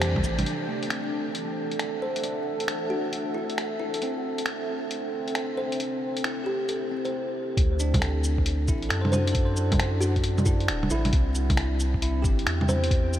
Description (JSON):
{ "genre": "future garage", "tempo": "135 BPM", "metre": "4/4", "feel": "swing 65% on 16ths", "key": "unclear", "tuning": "A4 = 442 Hz", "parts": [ { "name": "kalimba", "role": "melody", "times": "0.0-12.9 s", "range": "E4 to C5", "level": "-33 LUFS", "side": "equal", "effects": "analog delay" }, { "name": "bell-like tine electric piano", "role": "accompaniment", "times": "0.0-13.2 s", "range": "C3 to C5", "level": "-34 LUFS", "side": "right 1 dB", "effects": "medium stereo tremolo, sidechain pumping, analog delay" }, { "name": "deep dark ambient pad", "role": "sustained chords", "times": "0.0-13.2 s", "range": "C4 to G5", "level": "-32 LUFS", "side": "left 1 dB", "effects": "chorus, built-in reverb, sidechain pumping" }, { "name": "warm sub bass", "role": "bass", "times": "0.0-0.4, 7.6-13.2 s", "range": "D1 to F#2", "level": "-26 LUFS", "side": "equal", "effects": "sidechain pumping" }, { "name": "lo-fi sampler-style drum kit", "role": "drums", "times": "0.0-13.2 s", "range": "bongos, cabasa, finger snaps, hi-hat", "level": "-30 LUFS", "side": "equal", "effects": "small room ambience" }, { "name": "electronic kick drum", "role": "drums", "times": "0.2, 7.6-13.0 s", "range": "none", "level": "-25 LUFS", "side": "equal", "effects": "small room ambience" } ], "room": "moderate huge ambient reverb, RT60 8.1 s", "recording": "dreamy mix soaked in reverb, vinyl crackle", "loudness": "-24 LUFS", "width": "side -12 dB against mid", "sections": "0.5-7.6 A section; 7.6-13.2 B section", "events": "band accent 0.0", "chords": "0.5 Dadd9; 4.0 Am7/C; 7.6 Dadd9; 11.1 Am7 (rootless)", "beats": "0.02 | 0.46 0.91 1.35 1.80 | 2.24 2.69 3.13 3.58 | 4.02 4.46 4.91 5.35 | 5.80 6.24 6.69 7.13 | 7.58 8.02 8.46 8.91 | 9.35 9.80 10.24 10.69 | 11.13 11.57 12.02 12.46 | 12.91" }